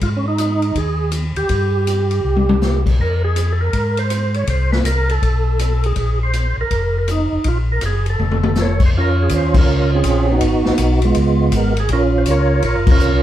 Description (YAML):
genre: soul jazz organ trio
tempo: 162 BPM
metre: 4/4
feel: swing 65% on 8ths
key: Bb minor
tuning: A4 = 440 Hz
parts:
  - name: percussive tonewheel organ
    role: melody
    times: 0.0-13.2 s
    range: Ab3 to Db5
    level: -19 LUFS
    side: right 2 dB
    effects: slow rotary speaker, overdrive, chorus vibrato
  - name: mellow tonewheel organ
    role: bass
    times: 0.0-13.2 s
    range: F1 to Ab2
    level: -18 LUFS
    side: equal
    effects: slow rotary speaker
  - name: swinging big-band drum kit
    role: drums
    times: 0.0-13.1 s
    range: crash cymbal, hi-hat, kick drum, ride cymbal, snare drum, toms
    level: -21 LUFS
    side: left 2 dB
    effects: none
room: moderate studio reverb, RT60 0.8 s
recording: heard from further back in the room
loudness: -14 LUFS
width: side -12 dB against mid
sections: 0.0-8.9 A section; 8.9-13.2 B section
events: drum fill 2.2-2.6, 8.2-8.6; band accent 9.5, 12.8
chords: 0.0 Ab5; 1.5 N.C.; 2.2 C5; 3.0 Fm; 4.5 Am/C; 5.2 Asus2/B; 6.0 Bbsus2; 8.2 F; 8.9 Bbm9; 10.4 Abm7; 11.2 Db7; 11.9 Gbmaj7